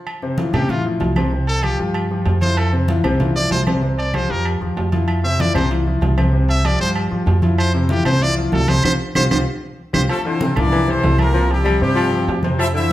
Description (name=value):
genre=latin, salsa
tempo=192 BPM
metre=4/4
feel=straight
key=F major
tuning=A4 = 445 Hz
part: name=agogo bells and timbales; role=percussion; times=0.1-12.8 s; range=none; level=-28 LUFS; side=right 3 dB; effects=none
part: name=claves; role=percussion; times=0.1-12.8 s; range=none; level=-33 LUFS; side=right 4 dB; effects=none
part: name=congas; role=percussion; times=0.1-12.9 s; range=none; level=-25 LUFS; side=equal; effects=none
part: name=clear concert grand piano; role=accompaniment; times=0.2-12.9 s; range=C3 to C5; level=-21 LUFS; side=left 2 dB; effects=none
part: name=brilliant trumpet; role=melody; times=0.5-10.0 s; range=E4 to E5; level=-22 LUFS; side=equal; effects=none
part: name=upright bass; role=bass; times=0.5-12.9 s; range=C2 to A2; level=-19 LUFS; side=equal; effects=none
part: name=brilliant horn section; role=melody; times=10.1-12.9 s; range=G3 to E5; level=-22 LUFS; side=left 1 dB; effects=none
part: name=warm baritone saxophone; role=second line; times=10.1-12.9 s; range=D3 to G3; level=-22 LUFS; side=left 2 dB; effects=none
room=wet large studio reverb, RT60 1.2 s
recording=heard from further back in the room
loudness=-15 LUFS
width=side -14 dB against mid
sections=0.1-10.1 A section; 10.1-12.9 B section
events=trumpet solo 0.1-10.1; drum fill 8.8-10.1; band accent 8.8-10.1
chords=0.1 Fmaj7; 1.3 Csus4; 2.6 F5; 3.8 Csus4; 5.1 F5; 6.3 Csus4; 7.6 F5; 8.8 Csus4; 10.1 Fmaj7; 11.3 Csus4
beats=| 0.06 0.38 0.69 1.00 | 1.32 1.63 1.94 2.26 | 2.57 2.88 3.20 3.51 | 3.83 4.14 4.45 4.76 | 5.08 5.39 5.71 6.02 | 6.33 6.64 6.96 7.27 | 7.58 7.90 8.21 8.52 | 8.84 9.15 9.46 9.78 | 10.09 10.40 10.72 11.03 | 11.34 11.66 11.97 12.28 | 12.60 12.91